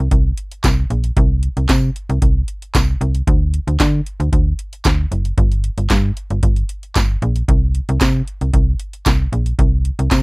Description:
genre	early-eighties boogie funk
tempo	114 BPM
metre	4/4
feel	straight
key	unclear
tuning	A4 = 442 Hz
part	slap-like FM bass	bass	0.0-10.2 s	F#1 to D3	-16 LUFS	equal	none
part	electro analog drum machine	drums	0.1-10.2 s	handclaps, hi-hat, kick drum, snare drum	-17 LUFS	equal	none
part	tambourine	percussion	0.6-10.2 s	none	-29 LUFS	right 11 dB	none
room	little or no reverb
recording	dry, close 1970s-style studio recording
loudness	-14 LUFS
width	side -32 dB against mid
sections	0.0-10.2 A section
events	none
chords	none

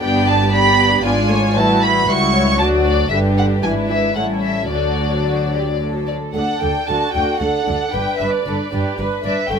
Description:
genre	quick classical-period movement for string orchestra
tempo	108-120 BPM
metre	3/4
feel	rubato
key	D major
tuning	A4 = 440 Hz
part	dark chamber violin section	melody	0.0-9.6 s	D5 to C#6	-19 LUFS	equal	none
part	dark studio violin section	second line	0.0-9.6 s	E4 to E5	-22 LUFS	equal	none
part	dark chamber viola section	accompaniment	0.0-9.6 s	D3 to B4	-21 LUFS	left 1 dB	none
part	warm chamber cello section	bass	0.0-9.6 s	C#2 to D3	-23 LUFS	right 1 dB	none
part	warm chamber double bass section	bass	0.0-9.6 s	G1 to D2	-24 LUFS	right 1 dB	none
room	moderate studio reverb, RT60 0.8 s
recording	minimal, uncompressed stereo recording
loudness	-15 LUFS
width	side -6 dB against mid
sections	0.0-6.4 A section; 6.4-9.6 A section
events	none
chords	0.0 G; 1.0 G#dim7; 1.5 A13; 2.6 D; 3.1 G; 3.6 E7/G#; 4.2 A7; 4.7 D; 7.9 G

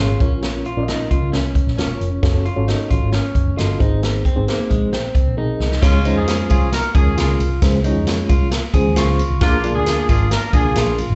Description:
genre	uptempo 1960s-style soul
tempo	134 BPM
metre	4/4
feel	straight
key	Db major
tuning	A4 = 439 Hz
part	mellow reed electric piano	accompaniment	0.0-11.0 s	Ab3 to Db6	-25 LUFS	equal	fast tremolo, slapback echo
part	electric guitar through a small old amp	riff	0.0-11.2 s	Ab3 to Ab4	-28 LUFS	equal	slapback echo
part	vintage muted picked electric bass	bass	0.0-11.2 s	Fb1 to F2	-22 LUFS	equal	none
part	swinging big-band drum kit	drums	0.2-11.1 s	crash cymbal, hi-hat, kick drum, ride cymbal, snare drum	-21 LUFS	equal	none
part	mellow horn section	second line	5.8-11.0 s	Ab3 to Bb4	-24 LUFS	equal	slapback echo
part	congas	percussion	5.8-11.1 s	none	-35 LUFS	equal	none
part	tambourine	percussion	5.8-11.1 s	none	-39 LUFS	equal	none
room	studio reverb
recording	live gig heard through the venue's PA, club reverb, nothing above 8.0 kHz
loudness	-18 LUFS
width	mono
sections	0.0-5.8 A section; 5.8-11.2 B section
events	drum fill 5.4-5.8; reed electric piano fill 8.7-9.4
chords	0.2 Bbm; 2.2 Gbm; 3.8 Ab; 5.8 Db; 9.4 Bb7

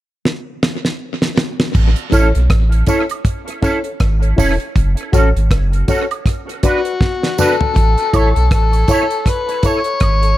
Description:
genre	roots reggae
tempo	80 BPM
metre	4/4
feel	swing 58% on 16ths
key	A major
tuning	A4 = 438 Hz
part	damped 70s drum kit	drums	0.3-10.4 s	crash cymbal, hi-hat, kick drum, rim click, snare drum, toms	-17 LUFS	equal	tape echo
part	warm sub bass	bass	1.8-10.3 s	E1 to B1	-13 LUFS	equal	none
part	electric guitar with an envelope filter	accompaniment	2.1-9.8 s	C#4 to C#5	-22 LUFS	right 3 dB	ensemble chorus, tape echo
part	reed electric piano	stabs	2.1-10.3 s	E4 to D5	-22 LUFS	left 2 dB	fast tremolo
part	tambourine and woodblock	percussion	2.1-10.2 s	none	-28 LUFS	right 10 dB	none
part	overdriven harmonica	melody	6.7-10.4 s	F#4 to C#5	-18 LUFS	left 4 dB	tape echo
room	small room ambience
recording	echo-heavy mix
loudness	-13 LUFS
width	side -15 dB against mid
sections	0.0-1.8 A section; 1.8-7.8 B section; 7.8-10.4 C section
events	drum fill 0.2-1.8, 7.0-7.8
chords	0.0 N.C.; 1.8 A; 4.8 F#m; 6.3 Bm; 7.8 A

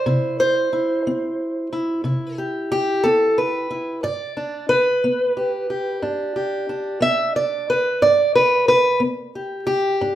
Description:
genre	acoustic country blues, solo or duo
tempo	60 BPM (dotted quarters)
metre	12/8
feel	straight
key	G major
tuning	A4 = 440 Hz
part	fingerpicked acoustic archtop guitar	solo	0.0-10.2 s	G2 to E5	-18 LUFS	equal	none
room	moderate large studio reverb, RT60 0.8 s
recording	band playing live in one room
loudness	-18 LUFS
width	side -12 dB against mid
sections	0.0-10.2 A section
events	steel-string acoustic guitar solo 0.0-10.2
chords	0.0 C; 4.0 G

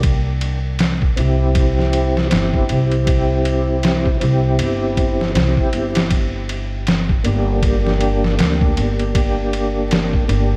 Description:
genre	trip hop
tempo	79 BPM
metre	4/4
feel	swing 59% on 16ths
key	unclear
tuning	A4 = 439 Hz
part	mellow tonewheel organ	accompaniment	0.0-10.6 s	Bb3 to G4	-23 LUFS	equal	chorus vibrato, slow rotary speaker, tremolo, tape echo
part	upright bass	bass	0.0-10.6 s	G1 to D2	-22 LUFS	equal	none
part	trip hop sampler-style drum kit	drums	0.0-10.5 s	kick drum, ride cymbal, snare drum	-22 LUFS	equal	none
room	light reverb, digital ambience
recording	vinyl crackle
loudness	-17 LUFS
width	mono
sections	0.0-10.6 A section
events	none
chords	0.0 C; 6.1 Gm

